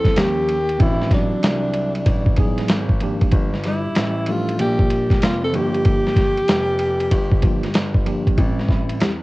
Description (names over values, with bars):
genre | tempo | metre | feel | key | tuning
hip hop, jazz-hop | 95 BPM | 4/4 | swing 65% on 16ths | G dorian | A4 = 442 Hz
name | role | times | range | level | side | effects
breathy tenor saxophone | melody | 0.0-8.1 s | D4 to A4 | -22 LUFS | equal | cassette tape, analog delay
mellow electric guitar | second line | 0.0-8.1 s | F#3 to C4 | -28 LUFS | equal | cassette tape
dark baby grand piano | bass | 0.0-9.2 s | F1 to E2 | -25 LUFS | equal | none
lo-fi sampler-style drum kit | drums | 0.0-9.2 s | hi-hat, kick drum, ride cymbal, snare drum | -18 LUFS | equal | vintage 12-bit sampler grit, cassette tape
tine electric piano | accompaniment | 0.2-9.2 s | E3 to Ab4 | -26 LUFS | right 1 dB | medium stereo tremolo, cassette tape
room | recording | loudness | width
little or no reverb | home recording on cassette | -16 LUFS | side -20 dB against mid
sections
0.0-8.4 A section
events
none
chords
0.2 Eb9; 0.8 D9/A; 2.7 Abm7; 3.3 Gm7; 8.4 Am7